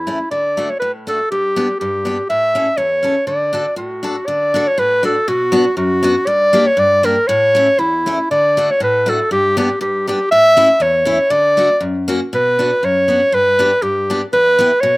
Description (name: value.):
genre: alpine folk.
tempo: 120 BPM.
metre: 2/4.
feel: swing 53% on 8ths, rubato.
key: D major.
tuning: A4 = 440 Hz.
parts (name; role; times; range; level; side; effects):
clear clarinet; melody; 0.0-15.0 s; E4 to E5; -13 LUFS; equal; none.
picked steel-string acoustic guitar; accompaniment; 0.0-15.0 s; E2 to A4; -21 LUFS; left 2 dB; slapback echo.
room: little or no reverb.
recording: recorded outdoors, with no room sound.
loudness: -13 LUFS.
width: side -22 dB against mid.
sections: 0.0-4.3 A section; 4.3-12.3 A section; 12.3-15.0 B section.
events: none.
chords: 0.3 D; 1.3 G; 2.3 A; 3.3 D; 5.3 Bm; 6.3 Gm; 7.3 A; 8.3 D; 9.3 G; 10.3 A; 11.3 D; 11.8 F#; 12.3 Bm; 13.3 G; 14.3 Em.